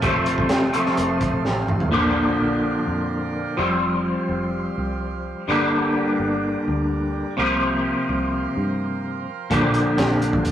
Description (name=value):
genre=psychedelic rock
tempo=127 BPM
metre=4/4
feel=straight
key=unclear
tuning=A4 = 443 Hz
part: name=hand-pumped harmonium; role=sustained chords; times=0.0-10.5 s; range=G4 to A5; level=-32 LUFS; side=right 6 dB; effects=none
part: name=twangy electric guitar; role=riff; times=0.0-10.5 s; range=F2 to G4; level=-21 LUFS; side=left 1 dB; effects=rotary speaker
part: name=fingered electric bass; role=bass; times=0.0-10.5 s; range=F1 to G2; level=-29 LUFS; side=equal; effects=none
part: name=crunchy breakbeat drum kit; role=drums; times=0.0-1.9, 9.5-10.5 s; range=hi-hat, kick drum, snare drum, toms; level=-23 LUFS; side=right 1 dB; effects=none
part: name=congas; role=percussion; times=0.1-1.9, 9.6-10.4 s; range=none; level=-39 LUFS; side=right 2 dB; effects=none
room=moderate studio reverb, RT60 0.5 s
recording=rough rehearsal-room recording, warm saturation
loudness=-19 LUFS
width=side -10 dB against mid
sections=0.0-1.9 A section; 1.9-10.5 B section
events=drum fill 1.5-1.9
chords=0.0 F; 1.9 Bb6; 3.6 Fsus2; 5.5 Gm; 7.4 C7sus4; 9.5 Bb6